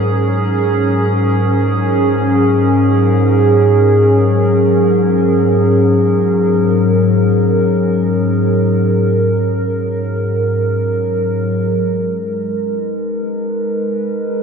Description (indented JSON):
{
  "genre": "ambient",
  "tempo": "free time",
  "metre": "none",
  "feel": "none",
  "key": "unclear",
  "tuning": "A4 = 438 Hz",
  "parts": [
    { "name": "warbly tape-like pad", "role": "solo", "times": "0.0-14.4 s", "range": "G#2 to B4", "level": "-12 LUFS", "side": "equal", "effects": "chorus, built-in reverb" }
  ],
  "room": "wet lush hall reverb, RT60 2.7 s",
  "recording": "none",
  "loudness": "-12 LUFS",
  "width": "side -6 dB against mid",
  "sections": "0.0-11.8 A section; 11.8-14.4 B section",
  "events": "none",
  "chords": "0.0 F#/G#; 11.8 G#m"
}